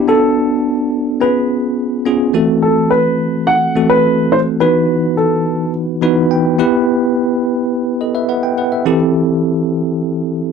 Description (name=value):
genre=pop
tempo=106 BPM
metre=4/4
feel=straight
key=unclear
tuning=A4 = 440 Hz
part: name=dark baby grand piano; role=melody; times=0.0-5.7 s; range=A4 to F#5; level=-15 LUFS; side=equal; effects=slapback echo
part: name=bell-like tine electric piano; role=accompaniment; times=0.0-10.5 s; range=E3 to B5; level=-14 LUFS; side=equal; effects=medium stereo tremolo
room=moderate booth ambience, RT60 0.3 s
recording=dry, close 1970s-style studio recording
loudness=-12 LUFS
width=side -6 dB against mid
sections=0.0-2.3 A section; 2.3-10.5 B section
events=tine electric piano fill 5.7-6.9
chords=0.1 Bm7; 1.2 C#7; 2.3 F#dim/E; 4.6 B/E; 6.6 Em; 8.9 Am7/E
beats=| 0.08 0.65 1.21 1.78 | 2.35 2.91 3.48 4.04 | 4.61 5.18 5.74 6.31 | 6.87 7.44 8.01 8.57 | 9.14 9.70 10.27